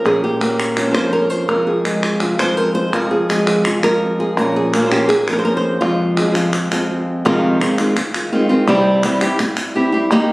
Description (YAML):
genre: flamenco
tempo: 167 BPM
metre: 4/4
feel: straight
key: F minor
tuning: A4 = 440 Hz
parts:
  - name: flamenco guitar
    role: melody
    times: 0.0-10.3 s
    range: F2 to C5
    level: -15 LUFS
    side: equal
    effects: plate reverb
  - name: flamenco guitar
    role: stabs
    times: 0.0-10.3 s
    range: F2 to C5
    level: -23 LUFS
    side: right 1 dB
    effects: none
  - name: palmas hand claps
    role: percussion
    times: 0.1-10.3 s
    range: none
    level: -22 LUFS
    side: equal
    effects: none
room: moderate stone room reverb, RT60 0.9 s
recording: recorded on a phone in the room, studio reverb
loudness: -14 LUFS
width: side -21 dB against mid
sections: 0.0-7.2 A section; 7.2-10.3 B section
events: none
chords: 0.0 Bbmadd9; 1.5 Fm; 4.4 Bbmadd9; 5.8 Fm; 7.2 Fm7; 8.7 C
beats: | 0.05 0.41 0.77 1.13 | 1.49 1.85 2.21 2.57 | 2.93 3.29 3.65 4.01 | 4.37 4.73 5.09 5.45 | 5.81 6.17 6.53 6.89 | 7.25 7.60 7.96 8.32 | 8.68 9.04 9.39 9.75 | 10.11